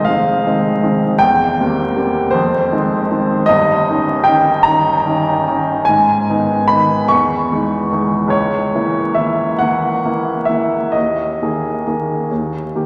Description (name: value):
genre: classical, romantic nocturne for solo piano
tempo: 43-54 BPM (dotted quarters)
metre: 12/8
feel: rubato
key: unclear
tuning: A4 = 440 Hz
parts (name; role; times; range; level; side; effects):
- warm upright piano; solo; 0.0-12.9 s; F1 to C#6; -16 LUFS; equal; none
room: wet cathedral reverb, RT60 4.1 s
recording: vinyl crackle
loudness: -16 LUFS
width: mono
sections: 0.0-12.9 A section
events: none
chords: 0.0 Fm7; 1.2 C7/E; 2.4 Fm7; 3.5 D#7/G; 5.9 G#m; 7.1 Emaj7; 8.3 A#dim/C#; 10.9 D#sus4; 12.3 D#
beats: 0.07 1.22 2.36 | 3.50 4.67 5.88 7.12 | 8.33 9.60 10.95 12.30